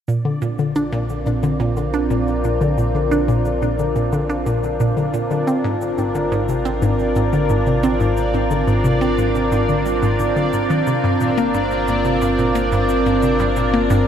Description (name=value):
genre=ambient, sequencer-driven space music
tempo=89 BPM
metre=4/4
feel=straight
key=unclear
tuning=A4 = 440 Hz
part: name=evolving wavetable pad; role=sustained chords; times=0.5-14.1 s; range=C4 to D5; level=-20 LUFS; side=equal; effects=chorus, built-in reverb
part: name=hollow square pluck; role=riff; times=0.1-14.0 s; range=G2 to D4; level=-20 LUFS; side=equal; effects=chorus, ping-pong delay
part: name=round analog bass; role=bass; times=0.1-14.1 s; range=G1 to Bb1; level=-26 LUFS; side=equal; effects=none
part: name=electronic cabasa and toms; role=percussion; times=0.1-14.0 s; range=none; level=-42 LUFS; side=right 1 dB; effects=overdrive, ping-pong delay
part: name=bubbling stepped-filter texture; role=texture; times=0.1-14.1 s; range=D4 to D5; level=-28 LUFS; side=right 1 dB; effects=chorus, built-in reverb
room=wet huge ambient reverb, RT60 7.9 s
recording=dreamy mix soaked in reverb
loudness=-16 LUFS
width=side -9 dB against mid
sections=0.1-14.1 A section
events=fade-in on drum 0.1-14.1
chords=0.1 Bb; 5.5 Ab6; 10.9 Gm